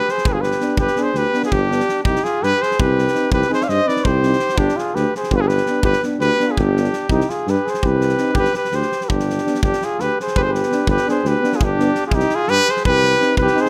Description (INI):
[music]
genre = balkan folk, Balkan brass band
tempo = 333 BPM (eighths)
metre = 7/8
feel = straight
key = G phrygian dominant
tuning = A4 = 440 Hz
[part]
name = mellow trumpet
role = melody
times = 0.0-13.7 s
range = G4 to F5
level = -22 LUFS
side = equal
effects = none
[part]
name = mellow flugelhorn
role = second line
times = 0.0-13.7 s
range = D4 to D5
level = -26 LUFS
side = equal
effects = none
[part]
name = big rock drum kit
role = percussion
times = 0.1-13.7 s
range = kick drum, snare drum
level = -26 LUFS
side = equal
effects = none
[part]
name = mellow tuba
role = bass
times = 0.3-13.5 s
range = G1 to G2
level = -23 LUFS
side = equal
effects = none
[part]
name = mellow euphonium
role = accompaniment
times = 0.6-13.7 s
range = B3 to C4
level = -29 LUFS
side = equal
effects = none
[part]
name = warm euphonium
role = accompaniment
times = 0.6-13.7 s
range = D4 to Eb4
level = -28 LUFS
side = equal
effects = none
[sound]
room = light reverb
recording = none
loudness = -18 LUFS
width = mono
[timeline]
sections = 0.0-9.6 A section; 9.6-13.7 A section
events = none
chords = 0.0 G; 2.0 Cm; 4.6 G; 7.1 C5; 8.4 G; 12.1 Cm